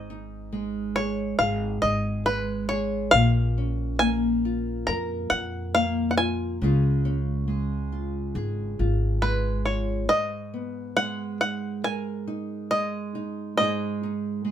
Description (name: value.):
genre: acoustic folk duo or small band.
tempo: 69 BPM.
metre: 4/4.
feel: straight.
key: G# dorian.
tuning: A4 = 439 Hz.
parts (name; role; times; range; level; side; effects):
bluegrass banjo; melody; 0.0-14.5 s; B4 to A#5; -24 LUFS; equal; none.
nylon-string guitar; accompaniment; 0.0-14.5 s; G#2 to A#4; -28 LUFS; equal; none.
upright bass; bass; 0.0-10.1 s; G#1 to E#2; -28 LUFS; equal; none.
room: little or no reverb.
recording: minimal, uncompressed stereo recording.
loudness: -23 LUFS.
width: side -10 dB against mid.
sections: 0.0-10.1 A section; 10.1-14.5 A section.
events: none.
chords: 0.0 G#sus4; 3.1 A#m; 6.6 C#; 10.1 G#madd9; 13.6 G#5.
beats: 0.52 1.39 2.26 | 3.13 4.00 4.88 5.75 | 6.62 7.49 8.36 9.23 | 10.10 10.97 11.84 12.71 | 13.57 14.44.